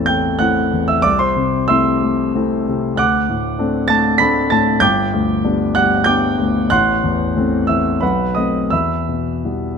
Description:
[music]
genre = classical, romantic character piece for solo piano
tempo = 82-100 BPM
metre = 3/4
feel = rubato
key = unclear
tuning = A4 = 440 Hz
[part]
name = warm concert grand piano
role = solo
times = 0.0-9.8 s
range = G1 to B6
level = -14 LUFS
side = equal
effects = none
[sound]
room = moderate recital hall reverb, RT60 1.5 s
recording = close, detailed microphones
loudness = -14 LUFS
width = side -6 dB against mid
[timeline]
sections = 0.0-9.8 A section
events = none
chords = 0.0 Am; 1.0 Am/C; 3.0 D7; 4.8 G; 6.7 Am; 8.0 B7b9; 8.7 Em

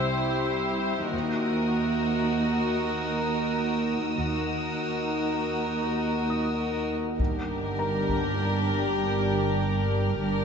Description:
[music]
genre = cinematic, suspense film score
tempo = 99 BPM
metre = 5/4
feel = straight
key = G harmonic minor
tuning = A4 = 440 Hz
[part]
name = rich studio violin section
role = melody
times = 0.0-10.4 s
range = Bb4 to C5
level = -34 LUFS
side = left 3 dB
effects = none
[part]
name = dark studio violin section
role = second line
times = 0.0-10.4 s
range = Gb4 to G4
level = -32 LUFS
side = left 3 dB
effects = none
[part]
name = dark studio viola section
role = accompaniment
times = 0.0-10.4 s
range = D4 to E4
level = -35 LUFS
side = right 1 dB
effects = none
[part]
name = deep dark ambient pad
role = sustained chords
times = 0.0-10.4 s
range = Eb4 to G5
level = -33 LUFS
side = equal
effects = chorus, built-in reverb
[part]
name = dark studio cello section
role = bass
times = 0.0-10.4 s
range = C2 to G2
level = -29 LUFS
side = right 2 dB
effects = none
[part]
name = felt-muted upright piano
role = texture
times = 0.0-1.1, 6.3-10.4 s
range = Bb4 to Eb6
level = -38 LUFS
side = left 2 dB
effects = none
[part]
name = rich symphonic double bass section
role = bass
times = 1.1-10.4 s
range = G1 to Eb2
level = -32 LUFS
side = right 4 dB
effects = none
[part]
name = clear studio violin section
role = texture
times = 1.1-10.4 s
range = Bb5 to F6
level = -39 LUFS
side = left 3 dB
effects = none
[part]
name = solo taiko drums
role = drums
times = 7.2-8.4 s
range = none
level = -30 LUFS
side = left 1 dB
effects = none
[sound]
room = moderate scoring stage reverb, RT60 2.1 s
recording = nothing above 7.8 kHz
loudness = -24 LUFS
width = side -6 dB against mid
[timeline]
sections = 0.0-7.2 A section; 7.2-10.4 A section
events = none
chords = 0.0 C; 1.1 Ebm; 7.2 Gm

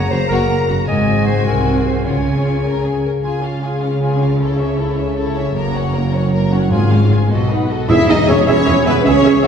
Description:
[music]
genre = cinematic, heroic adventure film score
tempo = 103 BPM (dotted quarters)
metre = 6/8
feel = straight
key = Db major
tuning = A4 = 441 Hz
[part]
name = warm symphonic violin section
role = melody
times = 0.0-9.5 s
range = B4 to Bb5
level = -26 LUFS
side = left 3 dB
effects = none
[part]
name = clear clarinet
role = second line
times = 0.0-3.0, 7.9-9.5 s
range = E4 to Eb5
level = -22 LUFS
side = left 2 dB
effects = none
[part]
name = concert harp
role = arpeggios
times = 0.0-9.5 s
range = Gb2 to Db5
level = -21 LUFS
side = left 4 dB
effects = none
[part]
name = warm symphonic violin section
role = second line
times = 0.1-9.5 s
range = F4 to E5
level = -25 LUFS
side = left 3 dB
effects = none
[part]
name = dark symphonic viola section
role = accompaniment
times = 0.1-9.5 s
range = Bb3 to E5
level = -23 LUFS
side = right 2 dB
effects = none
[part]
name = bright studio double bass section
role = bass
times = 0.1-9.5 s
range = Gb1 to E2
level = -21 LUFS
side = right 2 dB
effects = none
[part]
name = warm symphonic cello section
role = bass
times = 0.1-9.4 s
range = Gb2 to E4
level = -20 LUFS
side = right 3 dB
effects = none
[part]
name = timpani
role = percussion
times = 0.9-2.6, 6.7-8.4 s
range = E2 to Db3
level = -21 LUFS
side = left 1 dB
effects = none
[part]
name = cymbal swell and tam-tam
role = percussion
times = 5.5-9.4 s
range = none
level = barely audible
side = none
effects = none
[part]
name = silver concert flute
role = second line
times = 7.9-9.5 s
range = B4 to E5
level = -23 LUFS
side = left 1 dB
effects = none
[part]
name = dark French horn section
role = sustained chords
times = 7.9-9.5 s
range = F#3 to E4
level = -16 LUFS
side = right 3 dB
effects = none
[part]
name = mellow tuba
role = bass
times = 7.9-9.5 s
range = E1 to C#2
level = -21 LUFS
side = right 2 dB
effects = none
[sound]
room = wet scoring stage reverb, RT60 1.6 s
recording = heard from further back in the room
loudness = -13 LUFS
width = side -7 dB against mid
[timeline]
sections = 0.0-3.2 A section; 3.2-7.9 B section; 7.9-9.5 C section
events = band accent 7.9-8.3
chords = 0.0 Gb; 0.9 Ab7; 2.1 Db; 4.4 A/C#; 5.5 Gb; 6.7 Db/Ab; 7.3 Cb7; 7.9 E

